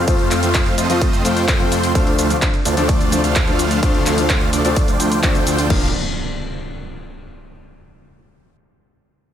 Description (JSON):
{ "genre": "EDM, festival progressive house", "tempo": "128 BPM", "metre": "4/4", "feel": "straight", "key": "Bb major", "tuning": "A4 = 440 Hz", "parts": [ { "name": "lush unison pad", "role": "sustained chords", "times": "0.0-5.9 s", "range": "C3 to F4", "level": "-27 LUFS", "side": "equal", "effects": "chorus, sidechain pumping" }, { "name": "big supersaw lead", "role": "riff", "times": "0.0-5.9 s", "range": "A3 to A5", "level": "-21 LUFS", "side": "right 1 dB", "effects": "phaser, sidechain pumping, dub echo" }, { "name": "wide detuned saw bass", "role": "bass", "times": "0.0-5.9 s", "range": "Bb1 to F2", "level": "-22 LUFS", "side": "equal", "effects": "chorus, sidechain pumping" }, { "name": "warm grand piano", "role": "accompaniment", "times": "0.1-5.9 s", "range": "F3 to F4", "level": "-23 LUFS", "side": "left 4 dB", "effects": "sidechain pumping, dub echo" }, { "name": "big-room dance drum kit", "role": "drums", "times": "0.1-5.8 s", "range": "crash cymbal, handclaps, hi-hat, ride cymbal, shaker", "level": "-23 LUFS", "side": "equal", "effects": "none" }, { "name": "electronic kick drum", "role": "drums", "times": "0.1-5.8 s", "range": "none", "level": "-18 LUFS", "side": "equal", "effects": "none" }, { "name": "impact", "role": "sound effects", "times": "5.7-7.6 s", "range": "none", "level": "-28 LUFS", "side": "equal", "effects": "none" } ], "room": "light reverb", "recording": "none", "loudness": "-14 LUFS", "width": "side -10 dB against mid", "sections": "0.0-5.7 A section; 5.7-7.6 B section", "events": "drop 0.0-5.7", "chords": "0.0 F; 2.0 Dm7; 5.7 Bbadd9", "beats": "| 0.08 0.55 1.01 1.48 | 1.95 2.42 2.89 3.36 | 3.83 4.30 4.76 5.23 | 5.70 6.17 6.64 7.11" }